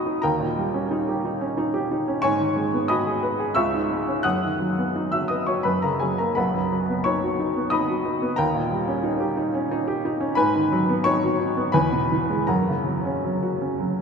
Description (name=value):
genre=classical, romantic character piece for solo piano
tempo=79-92 BPM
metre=3/4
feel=rubato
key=B major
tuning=A4 = 440 Hz
part: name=clear upright piano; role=solo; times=0.0-14.0 s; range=B1 to F#6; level=-21 LUFS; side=equal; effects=none
room=wet cathedral reverb, RT60 6.1 s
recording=in a vast, echoing space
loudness=-21 LUFS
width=side -6 dB against mid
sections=0.0-14.0 A section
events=none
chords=0.2 D#7; 2.2 G#m7; 3.6 C#m; 4.2 B/F#; 5.7 F#; 6.4 B; 8.4 D#7; 10.4 G#m7; 11.7 E; 12.5 F#